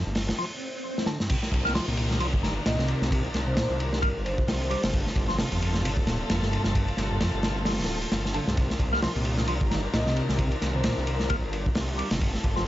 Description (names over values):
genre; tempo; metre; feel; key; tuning
breakbeat, breaks; 132 BPM; 4/4; swing 57% on 16ths; C dorian; A4 = 441 Hz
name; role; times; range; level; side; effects
dark studio string section; sustained chords; 0.0-12.7 s; C3 to Bb4; -34 LUFS; left 1 dB; sidechain pumping
percussive tonewheel organ; riff; 0.0-12.6 s; F2 to Bb3; -29 LUFS; equal; chorus vibrato, slow rotary speaker, tube saturation, vintage 12-bit sampler grit, digital delay
detuned saw bass; bass; 0.1-12.7 s; D1 to C2; -30 LUFS; equal; none
crunchy breakbeat drum kit; drums; 0.1-12.7 s; crash cymbal, hi-hat, kick drum, ride cymbal, snare drum; -28 LUFS; equal; none
swell and downlifter; sound effects; 0.5-4.9 s; none; -39 LUFS; left 1 dB; none
vibraphone with soft mallets; melody; 2.7-4.9, 9.9-10.9 s; Bb4 to Eb5; -34 LUFS; equal; telephone sound, digital delay
room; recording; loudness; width
light reverb; nothing above 7.7 kHz; -24 LUFS; side -14 dB against mid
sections
0.0-1.3 A section; 1.3-12.7 B section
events
break 0.4-1.3; swell 0.5-1.3; drum fill 1.0-1.3; drop 1.3-12.7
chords
0.0 Gm11; 1.3 Cm11; 4.9 Gm11; 8.6 Cm11